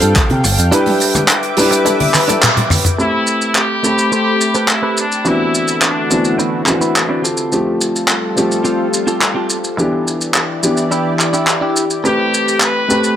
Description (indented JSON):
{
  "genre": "nu-disco, nu disco",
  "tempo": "106 BPM",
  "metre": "4/4",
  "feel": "straight",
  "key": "A minor",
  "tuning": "A4 = 440 Hz",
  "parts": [
    { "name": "warm grand piano", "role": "accompaniment", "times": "0.0-13.2 s", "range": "E3 to B5", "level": "-18 LUFS", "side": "equal", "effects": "analog delay" },
    { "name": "lush unison pad", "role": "sustained chords", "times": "0.0-13.2 s", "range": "D3 to D6", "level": "-20 LUFS", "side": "left 1 dB", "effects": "chorus, sidechain pumping" },
    { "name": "direct-recorded clean electric guitar", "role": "riff", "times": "0.0-12.2 s", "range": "C4 to D5", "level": "-21 LUFS", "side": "right 2 dB", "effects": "lush chorus, low-pass filter, analog delay" },
    { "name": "picked electric bass with an envelope filter", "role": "bass", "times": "0.0-0.7 s", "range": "G1 to C3", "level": "-14 LUFS", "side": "equal", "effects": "none" },
    { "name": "damped 70s drum kit", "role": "drums", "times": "0.0-13.2 s", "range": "handclaps, hi-hat, rim click, shaker, toms", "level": "-16 LUFS", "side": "equal", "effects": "none" },
    { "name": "cabasa and congas", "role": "percussion", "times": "0.0-3.0 s", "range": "none", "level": "-23 LUFS", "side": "left 2 dB", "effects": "none" },
    { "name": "brilliant trumpet section", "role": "melody", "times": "3.0-6.4, 12.0-13.2 s", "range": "D4 to B4", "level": "-18 LUFS", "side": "left 1 dB", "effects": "tape echo" }
  ],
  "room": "moderate plate reverb, RT60 1.5 s",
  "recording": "none",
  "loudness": "-12 LUFS",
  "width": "side -10 dB against mid",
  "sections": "0.0-3.0 A section; 3.0-13.2 B section",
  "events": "drum fill 2.1-3.0; band accent 2.4; filter sweep on clean electric guitar 3.0-13.2",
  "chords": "0.0 G9sus4; 0.7 Em7; 3.0 Am9; 5.3 D13; 7.2 G9sus4; 9.8 Em7; 12.1 Am9"
}